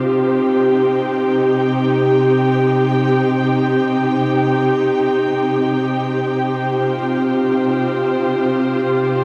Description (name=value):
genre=ambient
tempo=free time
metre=none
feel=none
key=C minor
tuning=A4 = 440 Hz
part: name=dark studio string section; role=solo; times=0.0-9.2 s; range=C3 to G5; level=-17 LUFS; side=equal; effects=diffuse ambient delay
room=wet huge ambient reverb, RT60 9.7 s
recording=none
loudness=-17 LUFS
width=mono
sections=0.0-9.2 A section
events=none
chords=0.0 Cm